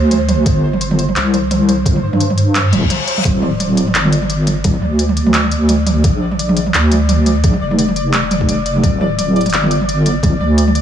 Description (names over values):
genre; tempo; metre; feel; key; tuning
half-time drum and bass; 172 BPM; 4/4; swing 57% on 16ths, half-time; D minor; A4 = 445 Hz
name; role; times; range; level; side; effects
deep soft wobble bass; bass; 0.0-10.8 s; D1 to G2; -14 LUFS; equal; chorus
pulsing gated texture; texture; 0.0-10.8 s; C5 to D5; -23 LUFS; left 1 dB; chorus, built-in reverb
organic electronic drum kit; drums; 0.1-10.8 s; handclaps, hi-hat, toms; -17 LUFS; right 1 dB; studio reverb
electronic kick drum; drums; 0.5-10.3 s; none; -17 LUFS; equal; overdrive, studio reverb
reverse cymbal; sound effects; 2.7-3.2 s; none; -23 LUFS; left 6 dB; none
room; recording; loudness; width
digital ambience; small room ambience; -12 LUFS; side -9 dB against mid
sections
0.0-10.8 A section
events
reverse cymbal 2.7-3.3; break 2.9-3.3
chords
0.0 D7sus4; 3.3 Dsus4; 6.0 Bb; 8.8 Dsus4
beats
0.11 | 0.46 0.81 1.16 1.51 | 1.86 2.21 2.55 2.90 | 3.25 3.60 3.95 4.30 | 4.65 5.00 5.34 5.69 | 6.04 6.39 6.74 7.09 | 7.44 7.79 8.14 8.48 | 8.83 9.18 9.53 9.88 | 10.23 10.58